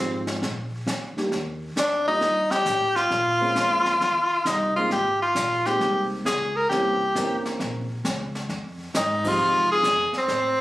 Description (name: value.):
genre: jazz, small-group swing and bop.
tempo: 134 BPM.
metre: 4/4.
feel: swing 67% on 8ths.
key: F minor.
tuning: A4 = 441 Hz.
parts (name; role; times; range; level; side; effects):
bright tenor saxophone; melody; 0.0-10.6 s; C4 to Bb4; -21 LUFS; equal; plate reverb.
dark upright piano; accompaniment; 0.0-9.8 s; E3 to Bb4; -29 LUFS; right 1 dB; none.
upright bass; bass; 0.0-10.6 s; G1 to C3; -33 LUFS; equal; none.
jazz brush drum kit; drums; 0.3-10.6 s; brushed snare drum, crash cymbal, hi-hat, kick drum, snare drum; -31 LUFS; equal; none.
room: moderate studio reverb, RT60 0.5 s.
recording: recorded on a phone in the room, studio reverb.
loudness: -21 LUFS.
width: side -16 dB against mid.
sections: 0.0-10.6 A section.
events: band accent 9.2.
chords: 0.4 Bb; 1.3 Eb; 3.1 Bbm9; 4.0 Ebsus2; 4.9 Abmaj9; 6.7 C7b9; 8.5 Fm7.